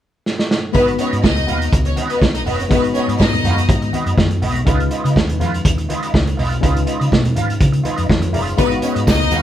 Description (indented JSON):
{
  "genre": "disco",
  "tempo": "122 BPM",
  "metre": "4/4",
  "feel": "straight",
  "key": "unclear",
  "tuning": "A4 = 440 Hz",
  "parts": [
    { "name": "vintage drum kit", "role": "drums", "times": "0.3-9.4 s", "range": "hi-hat, kick drum, snare drum", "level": "-18 LUFS", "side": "right 1 dB", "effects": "none" },
    { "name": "clear studio violin section", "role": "second line", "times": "0.7-3.9, 8.6-9.4 s", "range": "B3 to D#5", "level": "-20 LUFS", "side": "left 2 dB", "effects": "none" },
    { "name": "electric guitar at the edge of break-up", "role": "accompaniment", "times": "0.7-9.4 s", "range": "E#4 to E#5", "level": "-25 LUFS", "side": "right 4 dB", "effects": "wah" },
    { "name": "tine electric piano", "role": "accompaniment", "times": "0.7-9.4 s", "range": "G#3 to E#5", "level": "-23 LUFS", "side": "left 4 dB", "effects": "medium stereo tremolo" },
    { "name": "hollow-body short-scale fingered electric bass", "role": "bass", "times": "0.7-9.4 s", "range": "F#1 to C#3", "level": "-20 LUFS", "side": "equal", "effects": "none" },
    { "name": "congas", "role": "percussion", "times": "1.2-9.4 s", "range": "none", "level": "-26 LUFS", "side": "left 2 dB", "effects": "none" },
    { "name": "tambourine", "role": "percussion", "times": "8.6-9.4 s", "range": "none", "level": "-37 LUFS", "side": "right 8 dB", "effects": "none" }
  ],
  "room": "moderate studio reverb, RT60 0.7 s",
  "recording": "band playing live in one room",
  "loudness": "-14 LUFS",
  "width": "side -11 dB against mid",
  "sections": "0.7-9.4 A section",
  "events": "drum fill 0.2-0.7",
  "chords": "0.0 N.C.; 0.7 C#9"
}